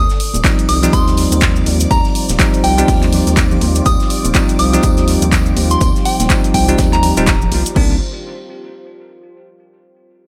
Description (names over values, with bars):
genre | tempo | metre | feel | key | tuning
deep house | 123 BPM | 4/4 | swing 59% on 16ths | unclear | A4 = 439 Hz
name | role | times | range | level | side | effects
soft synth bell | melody | 0.0-7.1 s | G5 to Eb6 | -23 LUFS | equal | chorus, delay
deep dark ambient pad | sustained chords | 0.1-8.0 s | F4 to C5 | -31 LUFS | equal | chorus, built-in reverb, sidechain pumping
rubbery square bass | bass | 0.0-8.0 s | Eb1 to Eb2 | -19 LUFS | equal | sidechain pumping
string machine, violins | texture | 0.0-7.8 s | D5 to D6 | -34 LUFS | equal | ensemble chorus, sidechain pumping
deep reggae drum kit | drums | 0.1-7.7 s | hi-hat, snare drum, tambourine | -33 LUFS | equal | none
cabasa | percussion | 0.1-7.7 s | none | -28 LUFS | equal | none
house drum kit | drums | 0.2-7.9 s | crash cymbal, handclaps, hi-hat | -23 LUFS | equal | small room ambience
congas | percussion | 0.3-7.6 s | none | -29 LUFS | equal | none
bell-like tine electric piano | stabs | 0.4-8.0 s | Eb3 to Eb4 | -20 LUFS | equal | sidechain pumping, tape echo
electronic kick drum | drums | 0.4-7.9 s | none | -18 LUFS | equal | small room ambience
room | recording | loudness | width
studio ambience | none | -13 LUFS | mono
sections
0.0-7.8 A section; 7.8-9.7 B section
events
drop 0.0-7.8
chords
0.0 Eb69; 7.8 Cm9